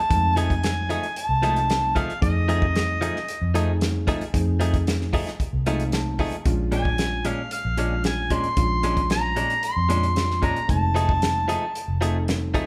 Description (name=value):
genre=straight-eighth soul blues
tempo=113 BPM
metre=4/4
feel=straight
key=unclear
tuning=A4 = 440 Hz
part: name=mellow harmonica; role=melody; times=0.0-12.2 s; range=Eb5 to C6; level=-27 LUFS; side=equal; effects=overdrive
part: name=barky reed electric piano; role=accompaniment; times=0.1-12.7 s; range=G#3 to A5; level=-34 LUFS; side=equal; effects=overdrive
part: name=vintage muted fingered electric bass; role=bass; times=0.1-12.5 s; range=F1 to F2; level=-27 LUFS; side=equal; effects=none
part: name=warm soul drum kit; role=drums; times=0.1-12.7 s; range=hi-hat, kick drum, snare drum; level=-29 LUFS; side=equal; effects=none
part: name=direct-recorded clean electric guitar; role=stabs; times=0.4-12.7 s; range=Bb2 to G#4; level=-32 LUFS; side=equal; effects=none
room=moderate large studio reverb, RT60 1.3 s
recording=band playing live in one room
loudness=-23 LUFS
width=mono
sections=0.0-12.7 A section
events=reed electric piano fill 5.4-6.5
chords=0.0 F7#9; 6.5 Bb7#9; 10.7 F7#9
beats=| 0.11 0.64 1.17 1.69 | 2.22 2.75 3.28 3.81 | 4.34 4.87 5.40 5.93 | 6.46 6.99 7.52 8.04 | 8.57 9.10 9.63 10.16 | 10.69 11.22 11.75 12.28